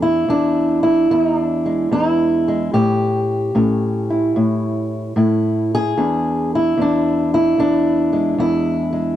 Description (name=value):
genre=acoustic country blues, solo or duo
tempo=74 BPM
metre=4/4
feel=swing 67% on 8ths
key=E mixolydian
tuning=A4 = 440 Hz
part: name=fingerpicked steel-string acoustic guitar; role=solo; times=0.0-9.2 s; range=E2 to G#4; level=-15 LUFS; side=equal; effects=none
room=light reverb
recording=dry, close 1970s-style studio recording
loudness=-15 LUFS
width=side -12 dB against mid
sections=0.0-9.2 A section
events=none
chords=0.0 E7; 2.7 A7; 6.0 E7